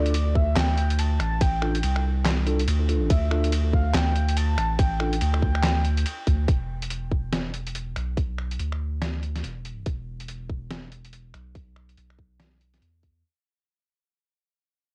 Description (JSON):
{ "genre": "deep dubstep", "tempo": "142 BPM", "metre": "4/4", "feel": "swing 61% on 16ths, half-time", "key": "E phrygian", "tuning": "A4 = 442 Hz", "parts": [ { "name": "breathy flute-like synth lead", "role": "melody", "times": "0.0-6.2 s", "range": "D5 to A5", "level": "-34 LUFS", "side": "equal", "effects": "analog chorus, cassette tape, dub echo" }, { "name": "mellow tine electric piano", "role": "stabs", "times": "0.0-5.1 s", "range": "D4 to A4", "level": "-34 LUFS", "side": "equal", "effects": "cassette tape, dub echo" }, { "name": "soft dub sub bass", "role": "bass", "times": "0.0-13.2 s", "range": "E1 to E2", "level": "-27 LUFS", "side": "equal", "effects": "none" }, { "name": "trip hop sampler-style drum kit", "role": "drums", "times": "0.1-13.1 s", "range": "finger snaps, handclaps, hi-hat, ride cymbal, snare drum", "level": "-32 LUFS", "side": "equal", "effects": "overdrive, cassette tape" }, { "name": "electronic kick drum", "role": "drums", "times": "0.4-13.1 s", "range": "none", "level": "-25 LUFS", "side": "equal", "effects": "cassette tape" } ], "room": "light reverb", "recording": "home recording on cassette", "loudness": "-25 LUFS", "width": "mono", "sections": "0.0-6.5 A section; 6.5-13.2 B section", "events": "drop 0.0-6.5; fade-out 6.5-13.2", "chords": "0.0 Dm; 6.5 E5" }